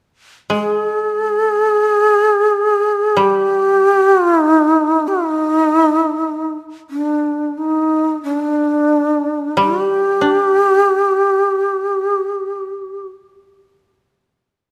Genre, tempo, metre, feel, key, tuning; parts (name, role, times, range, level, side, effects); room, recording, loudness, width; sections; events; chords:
japanese traditional; free time; A4 = 441 Hz
breathy long shakuhachi; melody; 0.5-13.1 s; D4 to Ab4; -16 LUFS; equal
koto; accompaniment; 0.5-12.9 s; G3 to D4; -21 LUFS; equal
light reverb; -15 LUFS; mono
0.0-14.7 A section